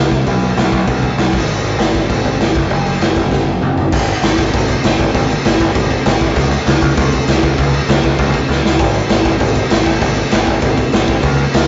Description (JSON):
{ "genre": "punk rock", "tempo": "197 BPM", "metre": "4/4", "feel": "straight", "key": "unclear", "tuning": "A4 = 441 Hz", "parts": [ { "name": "growling picked electric bass", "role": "bass", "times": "0.0-11.6 s", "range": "Gb1 to Db2", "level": "-19 LUFS", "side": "equal", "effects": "overdrive" }, { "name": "raw garage drum kit", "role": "drums", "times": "0.1-11.6 s", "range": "crash cymbal, kick drum, snare drum, toms", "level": "-16 LUFS", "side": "equal", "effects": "none" } ], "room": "little or no reverb", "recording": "rough rehearsal-room recording, warm saturation, nothing above 7.7 kHz", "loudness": "-14 LUFS", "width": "mono", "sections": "0.0-3.9 A section; 3.9-11.7 B section", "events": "drum fill 3.3-3.9, 8.5-8.8", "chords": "none", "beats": "| 0.27 0.57 0.88 1.18 | 1.49 1.79 2.10 2.40 | 2.71 3.01 3.32 3.62 | 3.93 4.23 4.54 4.84 | 5.14 5.45 5.75 6.06 | 6.36 6.67 6.97 7.28 | 7.58 7.88 8.19 8.49 | 8.80 9.10 9.41 9.71 | 10.02 10.32 10.63 10.93 | 11.23 11.54" }